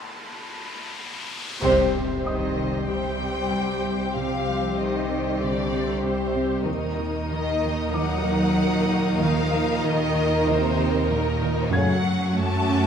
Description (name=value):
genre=cinematic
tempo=95 BPM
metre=4/4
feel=straight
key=unclear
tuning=A4 = 442 Hz
part: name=riser and impact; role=sound effects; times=0.0-4.2 s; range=none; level=-34 LUFS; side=left 1 dB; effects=none
part: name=rich studio violin section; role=texture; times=0.0-12.9 s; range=G5 to Eb6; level=-38 LUFS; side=left 4 dB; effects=none
part: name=warm studio violin section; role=second line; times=1.6-12.9 s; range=C#4 to C5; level=-29 LUFS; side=equal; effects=none
part: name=rich studio viola section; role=accompaniment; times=1.6-12.9 s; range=C3 to C#4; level=-30 LUFS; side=right 2 dB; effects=none
part: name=mellow French horn section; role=sustained chords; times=1.6-11.9 s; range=G3 to G4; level=-31 LUFS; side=left 4 dB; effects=none
part: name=mellow trombone section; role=sustained chords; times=1.6-12.0 s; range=Bb2 to G3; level=-32 LUFS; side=right 2 dB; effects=none
part: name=warm studio cello section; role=riff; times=1.6-12.9 s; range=F#2 to Eb3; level=-30 LUFS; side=right 1 dB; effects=none
part: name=warm studio double bass section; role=bass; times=1.6-12.9 s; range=C2 to F#2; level=-30 LUFS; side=right 2 dB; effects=none
part: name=warm studio violin section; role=melody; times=2.3-12.9 s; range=Bb4 to A5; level=-30 LUFS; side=left 4 dB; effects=none
part: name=warm studio cello section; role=bass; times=2.3-12.9 s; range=Bb2 to A3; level=-28 LUFS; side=equal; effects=none
part: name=felt-muted upright piano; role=texture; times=2.3-12.9 s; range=Eb5 to Ab6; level=-36 LUFS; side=left 2 dB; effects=none
room=wet scoring stage reverb, RT60 1.5 s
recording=minimal, uncompressed stereo recording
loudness=-21 LUFS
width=side -7 dB against mid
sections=0.0-1.6 A section; 1.6-12.9 B section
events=break 0.0-1.6; riser 0.0-1.6; band accent 1.6-2.3; impact 1.6-4.2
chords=0.0 Amadd9; 1.6 Cm; 6.7 Ebm; 11.7 F#m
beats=0.36 0.99 | 1.62 2.26 2.89 3.52 | 4.15 4.78 5.41 6.04 | 6.68 7.31 7.94 8.57 | 9.20 9.84 10.47 11.10 | 11.73 12.36